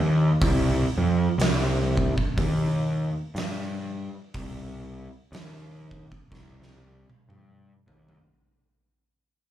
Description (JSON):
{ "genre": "stoner and doom metal", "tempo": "61 BPM", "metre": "4/4", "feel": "swing 59% on 8ths", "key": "C minor", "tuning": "A4 = 440 Hz", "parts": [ { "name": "fuzz picked electric bass", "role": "bass", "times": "0.0-8.2 s", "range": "C2 to G2", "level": "-24 LUFS", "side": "equal", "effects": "overdrive, tube saturation" }, { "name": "oversized low-tuned drum kit", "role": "drums", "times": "0.4-8.3 s", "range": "hi-hat, kick drum, snare drum, toms", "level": "-28 LUFS", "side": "equal", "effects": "none" } ], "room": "little or no reverb", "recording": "live gig heard through the venue's PA, club reverb", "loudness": "-22 LUFS", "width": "side -12 dB against mid", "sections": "0.0-8.3 A section", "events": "fade-out 0.0-8.3; drum fill 6.3-8.3", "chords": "none" }